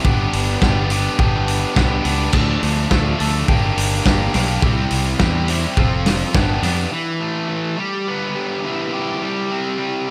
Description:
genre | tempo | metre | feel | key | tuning
indie rock | 105 BPM | 4/4 | straight | unclear | A4 = 440 Hz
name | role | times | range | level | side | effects
fuzz guitar | riff | 0.0-10.1 s | E3 to A4 | -22 LUFS | equal | distortion
loose indie drum kit | drums | 0.0-6.8 s | crash cymbal, hi-hat, kick drum, snare drum | -21 LUFS | equal | none
picked electric bass | bass | 0.1-6.9 s | F1 to F2 | -23 LUFS | equal | none
room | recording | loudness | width
moderate lush hall reverb, RT60 1.5 s, studio ambience | big arena sound | -19 LUFS | mono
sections
0.0-6.9 A section; 6.9-10.1 B section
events
none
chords
0.0 G; 2.3 Dm; 3.5 Gm; 4.6 C; 5.8 F; 6.3 G7; 6.9 A5; 7.8 G6; 9.2 C/G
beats
| 0.04 0.62 1.19 1.76 | 2.33 2.91 3.48 4.05 | 4.62 5.20 5.77 6.34 | 6.92 7.49 8.07 8.65 | 9.22 9.80

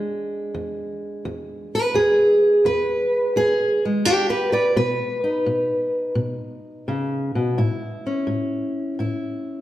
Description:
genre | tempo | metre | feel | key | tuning
acoustic country blues, solo or duo | 85 BPM | 4/4 | swing 68% on 8ths | E mixolydian | A4 = 438 Hz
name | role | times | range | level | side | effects
fingerpicked steel-string acoustic guitar | solo | 0.0-9.6 s | E2 to D5 | -20 LUFS | equal | none
room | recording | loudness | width
wet recital hall reverb, RT60 1.7 s | none | -19 LUFS | side -14 dB against mid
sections
0.0-9.6 A section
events
steel-string acoustic guitar solo 0.0-9.6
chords
0.0 E7; 4.8 B; 7.6 A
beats
0.53 1.24 | 1.94 2.65 3.35 4.06 | 4.76 5.47 6.17 6.88 | 7.58 8.29 8.99

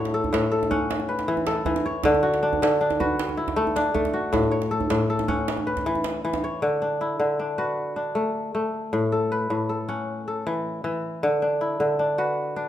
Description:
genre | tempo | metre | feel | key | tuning
west african traditional, West African string and xylophone music | 104 BPM (dotted quarters) | 12/8 | straight | D major | A4 = 441 Hz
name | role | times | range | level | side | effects
kora | arpeggios | 0.0-12.7 s | A2 to F#5 | -22 LUFS | left 1 dB | none
djembe | percussion | 0.1-6.4 s | none | -29 LUFS | right 4 dB | none
room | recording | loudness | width
moderate recital hall reverb, RT60 1.4 s | minimal, uncompressed stereo recording | -22 LUFS | side -11 dB against mid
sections
0.0-6.6 A section; 6.6-12.7 B section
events
none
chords
0.0 A; 2.0 D; 4.3 A; 6.6 D; 8.9 A; 11.2 D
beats
0.33 0.90 1.47 | 2.04 2.61 3.18 3.76 | 4.33 4.90 5.47 6.05 | 6.62 7.20 7.77 8.35 | 8.93 9.50 10.08 10.65 | 11.23 11.80 12.38

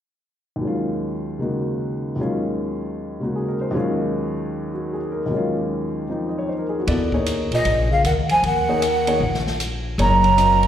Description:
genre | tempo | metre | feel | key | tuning
modal jazz | 154 BPM | 4/4 | swing 64% on 8ths | Eb dorian | A4 = 440 Hz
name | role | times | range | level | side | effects
warm grand piano | accompaniment | 0.6-10.7 s | Eb2 to Eb5 | -23 LUFS | left 1 dB | plate reverb, slapback echo
upright bass | bass | 6.9-10.7 s | Gb1 to Eb2 | -23 LUFS | left 1 dB | none
open jazz drum kit | drums | 6.9-10.7 s | hi-hat, kick drum, ride cymbal, snare drum | -29 LUFS | equal | none
breathy mellow jazz flute | melody | 7.5-10.7 s | Eb5 to Bb5 | -18 LUFS | right 3 dB | plate reverb, slapback echo
mellow bass clarinet | second line | 7.5-10.7 s | Bb2 to Gb3 | -22 LUFS | left 3 dB | slapback echo
room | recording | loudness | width
moderate club reverb, RT60 0.8 s | live gig heard through the venue's PA, recital hall reverb | -19 LUFS | side -10 dB against mid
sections
0.6-6.9 A section; 6.9-10.7 B section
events
none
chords
0.6 Ebm11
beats
| 0.61 1.00 1.40 1.79 | 2.18 2.57 2.96 3.35 | 3.74 4.13 4.52 4.91 | 5.30 5.70 6.09 6.48 | 6.87 7.26 7.65 8.04 | 8.43 8.82 9.21 9.60 | 9.99 10.38

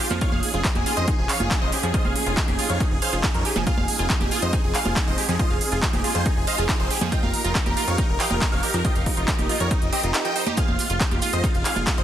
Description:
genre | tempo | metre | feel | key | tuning
uplifting trance | 139 BPM | 4/4 | straight | unclear | A4 = 441 Hz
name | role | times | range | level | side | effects
big supersaw lead | melody | 0.0-12.0 s | Db4 to G5 | -27 LUFS | equal | phaser, sidechain pumping, tape echo
muted studio string section | sustained chords | 0.0-12.0 s | F3 to Bb4 | -33 LUFS | left 2 dB | sidechain pumping
wide unison pluck | arpeggios | 0.0-11.9 s | F3 to F5 | -30 LUFS | right 3 dB | phaser, sidechain pumping, tape echo
big-room dance drum kit | drums | 0.0-12.0 s | congas, handclaps, hi-hat | -26 LUFS | right 2 dB | overdrive
plucky analog bass | bass | 0.1-12.0 s | F1 to F2 | -27 LUFS | equal | sidechain pumping
electronic kick drum | drums | 0.2-12.0 s | none | -24 LUFS | equal | overdrive
maracas | percussion | 10.6-12.0 s | none | -35 LUFS | right 3 dB | none
room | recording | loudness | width
little or no reverb | dense, heavily limited modern master | -20 LUFS | side -11 dB against mid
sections
0.0-12.0 A section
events
none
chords
0.2 Dbadd9/F; 3.7 Ab/F; 7.1 Eb/F; 10.6 Fm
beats
| 0.21 0.65 1.08 1.51 | 1.94 2.37 2.80 3.24 | 3.67 4.10 4.53 4.96 | 5.39 5.83 6.26 6.69 | 7.12 7.55 7.98 8.42 | 8.85 9.28 9.71 10.14 | 10.57 11.01 11.44 11.87

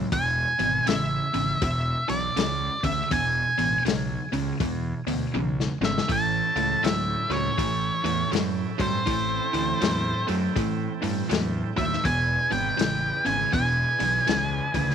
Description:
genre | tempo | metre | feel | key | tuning
blues rock power trio and southern rock | 81 BPM | 4/4 | swing 63% on 8ths | E mixolydian | A4 = 440 Hz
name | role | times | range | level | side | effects
distorted electric guitar | riff | 0.0-14.9 s | E2 to F#3 | -28 LUFS | right 1 dB | overdrive
fuzz fingered electric bass | bass | 0.0-14.9 s | E1 to A2 | -31 LUFS | right 1 dB | overdrive
octave-fuzz lead guitar | melody | 0.1-14.9 s | C5 to A5 | -26 LUFS | equal | distortion
vintage drum kit | drums | 0.1-14.9 s | hi-hat, kick drum, snare drum, toms | -30 LUFS | left 5 dB | none
overdriven tonewheel organ | sustained chords | 6.1-14.9 s | C4 to G5 | -35 LUFS | right 11 dB | slow rotary speaker
room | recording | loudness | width
light reverb, studio ambience | 1960s-style stereo | -22 LUFS | side -8 dB against mid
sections
0.0-14.9 A section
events
drum fill 5.4-6.1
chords
0.1 E; 6.1 A7; 9.1 Am7; 12.1 E7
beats
| 0.13 0.87 1.62 2.37 | 3.12 3.86 4.61 5.35 | 6.10 6.84 7.59 8.33 | 9.07 9.82 10.56 11.31 | 12.05 12.79 13.54 14.28

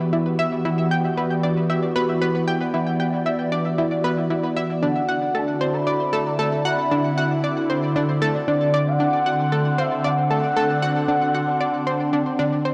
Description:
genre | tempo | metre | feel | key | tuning
ambient, sequencer-driven space music | 115 BPM | 4/4 | straight | unclear | A4 = 440 Hz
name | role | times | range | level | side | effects
phased analog pad | sustained chords | 0.0-12.7 s | D3 to D5 | -25 LUFS | equal | phaser, chorus
analog pluck | riff | 0.1-12.7 s | D4 to G5 | -26 LUFS | equal | chorus, cassette tape, shimmer reverb, tape echo
expressive synth lead | melody | 4.8-12.7 s | D5 to B5 | -27 LUFS | equal | lush chorus, shimmer reverb, tape echo
room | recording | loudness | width
wet concert hall reverb, RT60 2.4 s | worn, warbling old tape, cassette tape, warbly pitch drift | -21 LUFS | mono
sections
0.0-12.7 A section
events
none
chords
0.0 Em7; 4.8 D7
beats
0.13 | 0.65 1.17 1.70 2.22 | 2.74 3.26 3.78 4.30 | 4.83 5.35 5.87 6.39 | 6.91 7.43 7.96 8.48 | 9.00 9.52 10.04 10.56 | 11.09 11.61 12.13 12.65

